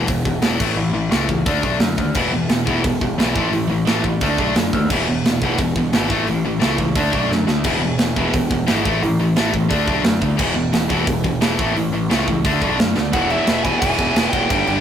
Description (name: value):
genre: punk rock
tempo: 175 BPM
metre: 4/4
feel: straight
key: unclear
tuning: A4 = 439 Hz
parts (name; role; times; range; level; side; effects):
- distorted electric guitar; riff; 0.0-14.8 s; E2 to D4; -20 LUFS; left 4 dB; overdrive
- growling picked electric bass; bass; 0.0-14.8 s; E1 to F#2; -24 LUFS; equal; overdrive
- tight metal drum kit; drums; 0.1-14.8 s; crash cymbal, hi-hat, kick drum, snare drum; -21 LUFS; right 1 dB; none
- tight distorted guitar; riff; 2.2-14.8 s; E2 to D4; -24 LUFS; right 7 dB; distortion
- biting lead guitar; melody; 13.1-14.8 s; E5 to G#5; -21 LUFS; right 2 dB; overdrive
room: light reverb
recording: rough rehearsal-room recording, warm saturation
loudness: -16 LUFS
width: side -9 dB against mid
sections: 0.0-13.1 A section; 13.1-14.8 B section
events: drum fill 7.3-7.6, 13.0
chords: 0.0 E5; 0.6 A; 1.5 D; 2.2 E5; 3.4 A5; 4.2 D; 4.9 E; 6.1 A; 7.0 D; 7.6 E; 8.8 A5; 9.7 D; 10.4 E5; 11.6 A; 12.4 D; 13.1 E